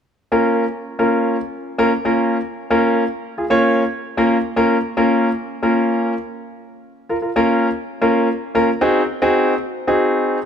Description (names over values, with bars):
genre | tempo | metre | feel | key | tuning
pop | 113 BPM | 4/4 | straight | Bb minor | A4 = 436 Hz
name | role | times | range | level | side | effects
clear concert grand piano | accompaniment | 0.3-10.4 s | Bb3 to Db5 | -16 LUFS | equal | none
room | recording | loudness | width
moderate lush hall reverb, RT60 2.7 s | none | -16 LUFS | side -8 dB against mid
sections
0.3-4.6 A section; 4.6-10.5 B section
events
none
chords
0.3 Bbm; 8.8 Ab7